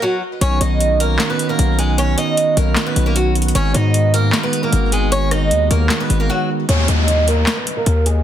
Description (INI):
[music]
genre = hip hop, trap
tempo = 153 BPM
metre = 4/4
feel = half-time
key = Eb minor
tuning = A4 = 438 Hz
[part]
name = picked swing-style acoustic guitar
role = melody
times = 0.0-8.2 s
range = Gb3 to D#5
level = -19 LUFS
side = right 1 dB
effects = low-pass filter, ping-pong delay
[part]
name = pipe organ, principal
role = sustained chords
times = 0.4-6.7 s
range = D#3 to F#4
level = -21 LUFS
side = right 5 dB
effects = none
[part]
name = distorted 808-style bass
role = bass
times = 0.4-8.2 s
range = Ab1 to Ab2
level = -16 LUFS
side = left 1 dB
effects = distortion
[part]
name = booming analog drum machine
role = drums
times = 0.4-8.2 s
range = handclaps, hi-hat, rim click, snare drum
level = -21 LUFS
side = left 1 dB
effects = overdrive
[part]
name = downlifter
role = sound effects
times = 6.7-8.2 s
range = none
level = -22 LUFS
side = left 2 dB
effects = none
[sound]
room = light reverb, digital ambience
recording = dense, heavily limited modern master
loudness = -14 LUFS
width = side -10 dB against mid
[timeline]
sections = 0.0-6.7 A section; 6.7-8.2 B section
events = break 6.3-6.7; filter sweep on steel-string acoustic guitar 6.7-8.2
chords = 0.4 Badd9; 3.6 Abm7; 6.7 Eb7(no3)